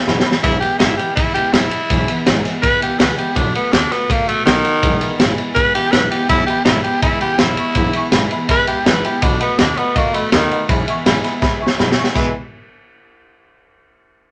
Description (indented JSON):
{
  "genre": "rockabilly",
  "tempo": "164 BPM",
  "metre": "4/4",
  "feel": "straight",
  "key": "E major",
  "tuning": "A4 = 436 Hz",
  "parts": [
    { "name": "picked steel-string acoustic guitar", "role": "accompaniment", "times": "0.0-12.3 s", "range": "E2 to F#4", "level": "-25 LUFS", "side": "equal", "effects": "none" },
    { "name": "upright bass", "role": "bass", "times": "0.0-12.3 s", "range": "E1 to D#2", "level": "-27 LUFS", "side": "equal", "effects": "none" },
    { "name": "bright upright piano", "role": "accompaniment", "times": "0.1-0.4, 6.3-12.3 s", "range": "D#5 to C#6", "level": "-26 LUFS", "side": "equal", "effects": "none" },
    { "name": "vintage drum kit", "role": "drums", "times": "0.1-12.2 s", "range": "crash cymbal, kick drum, ride cymbal, snare drum", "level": "-19 LUFS", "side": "equal", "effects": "none" },
    { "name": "raspy tenor saxophone", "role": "melody", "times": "0.4-12.3 s", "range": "D#3 to B4", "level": "-20 LUFS", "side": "equal", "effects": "none" }
  ],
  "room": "moderate studio ambience, RT60 0.5 s",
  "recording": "nothing above 10.4 kHz",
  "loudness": "-16 LUFS",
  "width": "mono",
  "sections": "0.4-12.2 A section; 12.2-13.6 B section",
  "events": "drum fill 0.0-0.4, 11.4-12.2",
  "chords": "0.4 E; 3.4 B7; 4.8 E; 9.2 B7; 10.7 E"
}